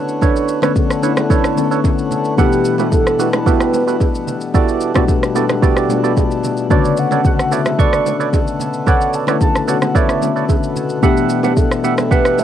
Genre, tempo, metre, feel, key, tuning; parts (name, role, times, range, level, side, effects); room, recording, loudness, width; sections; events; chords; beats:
amapiano; 111 BPM; 4/4; straight; B minor; A4 = 441 Hz
soft electric-piano-like synth keys; accompaniment; 0.0-12.4 s; B2 to F#5; -19 LUFS; left 7 dB; chorus, cassette tape
hand-pumped harmonium; sustained chords; 0.0-12.4 s; B2 to F#5; -24 LUFS; left 1 dB; cassette tape
afro-pop drum kit; drums; 0.1-12.4 s; kick drum, rim click, shaker; -16 LUFS; equal; cassette tape
percussive organ stab; stabs; 0.2-12.4 s; B3 to C#6; -19 LUFS; right 9 dB; chorus, cassette tape, tape echo, plate reverb
congas and bongos; percussion; 0.2-12.4 s; -25 LUFS; right 10 dB
warm velvety synth lead; melody; 2.4-12.4 s; G4 to A5; -20 LUFS; equal; chorus, tremolo, cassette tape, tape echo, plate reverb
moderate booth ambience, RT60 0.2 s; home recording on cassette; -13 LUFS; side -10 dB against mid
0.0-12.4 A section
0.0 Bm9; 2.4 Gmaj13/B; 4.5 Em11/B; 6.7 Bm9; 11.0 Gmaj13/B
| 0.22 0.76 1.30 1.84 | 2.38 2.92 3.46 4.00 | 4.54 5.09 5.63 6.17 | 6.71 7.25 7.79 8.33 | 8.87 9.41 9.95 10.49 | 11.03 11.57 12.11